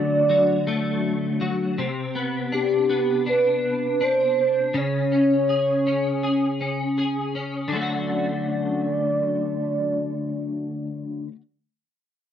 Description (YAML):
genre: indie pop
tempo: 81 BPM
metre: 4/4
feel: swing 55% on 16ths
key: D lydian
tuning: A4 = 439 Hz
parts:
  - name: warbly nostalgic lead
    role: melody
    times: 0.0-11.3 s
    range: G4 to D5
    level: -22 LUFS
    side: right 2 dB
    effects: lush chorus, slapback echo
  - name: twelve-string electric guitar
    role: accompaniment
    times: 0.0-11.4 s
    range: C3 to G#4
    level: -24 LUFS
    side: left 2 dB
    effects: ensemble chorus, warbly pitch drift
room: light reverb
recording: dry, close 1970s-style studio recording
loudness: -21 LUFS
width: side -9 dB against mid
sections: 0.0-1.8 A section; 1.8-7.7 B section; 7.7-10.7 C section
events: none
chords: 0.0 D; 1.8 Csus2; 4.7 C#5; 7.7 D